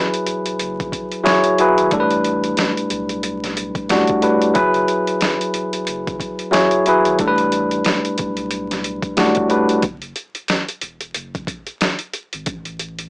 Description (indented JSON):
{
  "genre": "hip hop, boom-bap hip-hop",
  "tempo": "91 BPM",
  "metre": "4/4",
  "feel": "swing 60% on 16ths",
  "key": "unclear",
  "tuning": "A4 = 440 Hz",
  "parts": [
    { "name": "bell-like tine electric piano", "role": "accompaniment", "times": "0.0-9.8 s", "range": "A2 to C#5", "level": "-16 LUFS", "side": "equal", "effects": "cassette tape, high-pass filter, low-pass filter" },
    { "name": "boom bap sampler-style drum kit", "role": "drums", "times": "0.1-13.1 s", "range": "hi-hat, kick drum, snare drum", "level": "-21 LUFS", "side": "equal", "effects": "none" },
    { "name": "soft dub sub bass", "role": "bass", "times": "0.3-13.1 s", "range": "E1 to B1", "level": "-36 LUFS", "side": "equal", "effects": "none" }
  ],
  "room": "light reverb",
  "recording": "vinyl crackle, small speaker sound",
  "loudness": "-16 LUFS",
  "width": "side -28 dB against mid",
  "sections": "0.0-13.1 A section",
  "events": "break 9.8-13.1",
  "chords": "0.0 F#9sus4; 1.9 A9sus4; 4.6 F#9sus4; 7.2 A9sus4; 9.8 N.C.",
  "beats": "0.60 1.26 | 1.92 2.58 3.24 3.90 | 4.55 5.21 5.87 6.53 | 7.19 7.85 8.51 9.17 | 9.83 10.49 11.15 11.81 | 12.47"
}